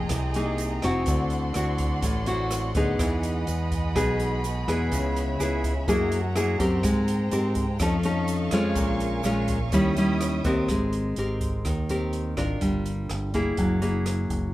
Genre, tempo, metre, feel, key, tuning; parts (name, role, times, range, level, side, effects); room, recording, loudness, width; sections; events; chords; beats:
bossa nova; 125 BPM; 4/4; straight; A4 = 437 Hz
nylon-string guitar; accompaniment; 0.0-14.5 s; A2 to Bb4; -25 LUFS; left 1 dB
warm studio violin section; sustained chords; 0.0-10.7 s; G#3 to Eb6; -34 LUFS; right 2 dB
fingered electric bass; bass; 0.0-14.5 s; F1 to Ab2; -28 LUFS; equal
open jazz drum kit; drums; 0.1-14.4 s; hi-hat, kick drum, rim click; -31 LUFS; equal
egg shaker; percussion; 0.1-10.7 s; -44 LUFS; right 6 dB
light reverb; -23 LUFS; side -16 dB against mid
0.0-10.7 A section; 10.7-14.5 B section
0.0 Fm11; 1.1 D9; 3.0 Emaj7; 4.9 Dbm7; 5.9 Gb9; 6.8 Abmaj9; 7.8 F7alt; 8.8 Bbm7; 9.7 Eb7b9; 10.7 Abmaj9; 12.6 Gm7; 13.6 Gb9
0.11 0.59 | 1.07 1.55 2.04 2.52 | 3.00 3.48 3.96 4.44 | 4.92 5.40 5.88 6.37 | 6.85 7.33 7.81 8.29 | 8.77 9.25 9.73 10.21 | 10.70 11.18 11.66 12.14 | 12.62 13.10 13.59 14.07